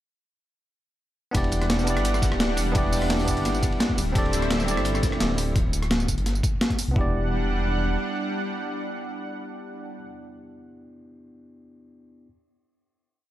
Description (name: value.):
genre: liquid drum and bass.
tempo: 171 BPM.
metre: 4/4.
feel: straight.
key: E minor.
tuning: A4 = 440 Hz.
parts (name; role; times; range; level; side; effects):
bell-like tine electric piano; accompaniment; 1.3-12.3 s; B3 to D5; -30 LUFS; right 1 dB; ping-pong delay.
lush unison pad; sustained chords; 1.3-10.0 s; G3 to F#5; -30 LUFS; equal; chorus.
dark detuned saw bass; bass; 1.3-8.0 s; D1 to C2; -26 LUFS; equal; none.
breakbeat sampler-style drum kit; drums; 1.3-6.9 s; hi-hat, rim click, snare drum, tambourine; -27 LUFS; equal; overdrive.
crunchy breakbeat drum kit; drums; 1.3-5.5 s; hi-hat, ride cymbal, snare drum; -36 LUFS; equal; high-pass filter on cymbals, high-pass filter on hats, high-pass filter on snare, high-pass filter on room.
electronic kick drum; drums; 1.3-7.0 s; none; -26 LUFS; equal; overdrive.
room: studio reverb.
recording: none.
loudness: -22 LUFS.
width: side -13 dB against mid.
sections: 1.3-7.0 drop; 7.0-9.8 final chord.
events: drop 1.3-7.0.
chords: 1.3 Em7; 4.0 D7sus4; 7.0 Em7.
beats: | 1.35 1.70 2.05 2.40 | 2.75 3.10 3.45 3.80 | 4.15 4.50 4.86 5.21 | 5.56 5.91 6.26 6.61 | 6.96 7.31 7.66 8.01 | 8.36 8.71 9.07 9.42.